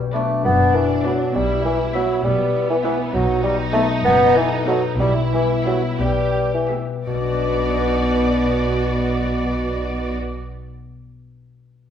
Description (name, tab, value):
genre	cinematic, playful, whimsical film cue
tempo	54-67 BPM (dotted quarters)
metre	6/8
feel	straight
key	B minor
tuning	A4 = 440 Hz
part	concert harp	arpeggios	0.0-11.0 s	B2 to D5	-25 LUFS	left 6 dB	none
part	muted studio cello section	bass	0.0-10.1 s	F#2 to B2	-30 LUFS	right 1 dB	none
part	muted studio double bass section	bass	0.0-10.1 s	F#1 to B1	-26 LUFS	right 1 dB	none
part	muted studio violin section	melody	0.1-10.1 s	D5 to E5	-29 LUFS	equal	none
part	mellow bassoon	accompaniment	0.1-10.1 s	B2 to B3	-20 LUFS	right 1 dB	none
part	muted studio viola section	accompaniment	0.1-10.1 s	B3 to B4	-27 LUFS	left 1 dB	none
part	muted studio violin section	second line	0.4-10.1 s	B3 to G4	-28 LUFS	right 1 dB	none
room	wet stone room reverb, RT60 1.3 s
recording	heard from further back in the room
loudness	-17 LUFS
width	side -9 dB against mid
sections	0.0-7.1 A section; 7.1-11.3 B section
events	slowing down 2.2-7.1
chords	0.0 Bm; 1.3 Em/B; 3.1 B7; 5.0 Em/B; 7.1 Bm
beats	0.44 | 1.34 2.24 | 3.13 4.04 | 4.99 6.00 | 7.07 8.14 | 9.21 10.28